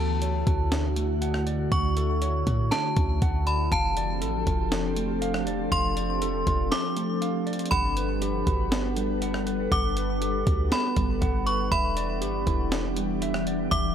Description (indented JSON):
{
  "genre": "hip hop, atmospheric cloud-rap",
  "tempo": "120 BPM",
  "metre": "4/4",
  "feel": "half-time",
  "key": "D major",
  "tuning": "A4 = 445 Hz",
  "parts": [
    { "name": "metallic FM bell", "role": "melody", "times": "0.0-13.9 s", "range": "A5 to D6", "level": "-30 LUFS", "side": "equal", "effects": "chorus, ping-pong delay" },
    { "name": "glassy FM pad", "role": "sustained chords", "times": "0.0-13.9 s", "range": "D3 to F#5", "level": "-29 LUFS", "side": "left 2 dB", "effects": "ensemble chorus, built-in reverb" },
    { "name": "mellow electric guitar", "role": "arpeggios", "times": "0.0-13.9 s", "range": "G3 to F#5", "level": "-33 LUFS", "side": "right 4 dB", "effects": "ping-pong delay" },
    { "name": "clean 808-style bass", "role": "bass", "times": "0.0-13.9 s", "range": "E1 to A2", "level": "-28 LUFS", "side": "equal", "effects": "none" },
    { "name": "breakbeat sampler-style drum kit", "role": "drums", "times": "0.2-13.8 s", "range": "hi-hat, kick drum, rim click, snare drum", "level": "-29 LUFS", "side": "equal", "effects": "none" }
  ],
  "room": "light reverb",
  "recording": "none",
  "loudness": "-23 LUFS",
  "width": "side -9 dB against mid",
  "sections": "0.0-13.9 A section",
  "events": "kick muted 6.7-7.7",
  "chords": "0.0 Dmaj7; 3.7 F6; 7.7 Gmaj7; 11.7 Em7"
}